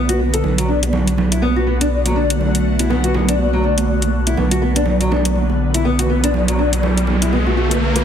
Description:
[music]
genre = afro house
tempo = 122 BPM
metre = 4/4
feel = swing 57% on 16ths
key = B minor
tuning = A4 = 440 Hz
[part]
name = ethereal airy pad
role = sustained chords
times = 0.0-8.0 s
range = D3 to F#4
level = -23 LUFS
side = equal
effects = ensemble chorus, built-in reverb, phaser
[part]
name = nylon-string guitar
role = arpeggios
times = 0.0-8.0 s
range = F#3 to B4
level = -20 LUFS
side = left 1 dB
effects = low-pass filter, dub echo
[part]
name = warm sub bass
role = bass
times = 0.0-8.0 s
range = B1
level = -19 LUFS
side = equal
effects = none
[part]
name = electronic hi-hat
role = drums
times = 0.1-8.0 s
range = none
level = -22 LUFS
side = left 1 dB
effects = overdrive
[part]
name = congas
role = percussion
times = 0.1-8.0 s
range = none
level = -22 LUFS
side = right 4 dB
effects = none
[part]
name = riser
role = sound effects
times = 5.6-8.0 s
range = none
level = -24 LUFS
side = left 1 dB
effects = none
[sound]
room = light reverb, studio ambience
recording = heavily compressed radio sound, multiband compression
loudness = -14 LUFS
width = side -8 dB against mid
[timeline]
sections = 0.0-8.0 A section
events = riser 5.6-8.0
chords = 0.0 Bm7

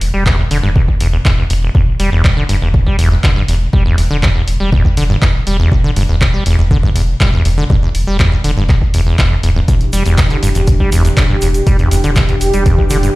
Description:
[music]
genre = acid house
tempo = 121 BPM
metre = 4/4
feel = straight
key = E minor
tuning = A4 = 440 Hz
[part]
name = warm sub bass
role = bass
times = 0.0-13.1 s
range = D1 to E1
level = -16 LUFS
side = equal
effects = sidechain pumping
[part]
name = punchy analog drum machine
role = drums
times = 0.0-13.1 s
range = handclaps, hi-hat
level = -21 LUFS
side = equal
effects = none
[part]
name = acid bass, saw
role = riff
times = 0.1-13.1 s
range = E1 to G3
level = -15 LUFS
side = equal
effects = sidechain pumping, ping-pong delay
[part]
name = electronic kick drum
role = drums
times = 0.3-12.9 s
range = none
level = -12 LUFS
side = equal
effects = none
[part]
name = lush unison pad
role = sustained chords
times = 9.7-13.2 s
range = E3 to G4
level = -18 LUFS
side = right 1 dB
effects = chorus, sidechain pumping
[part]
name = egg shaker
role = percussion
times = 9.7-13.1 s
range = none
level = -29 LUFS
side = right 4 dB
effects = none
[sound]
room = light reverb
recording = played on a big sound system in a bare room, large studio reverb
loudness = -10 LUFS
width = side -20 dB against mid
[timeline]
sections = 0.0-13.2 A section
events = none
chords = 0.0 Em7

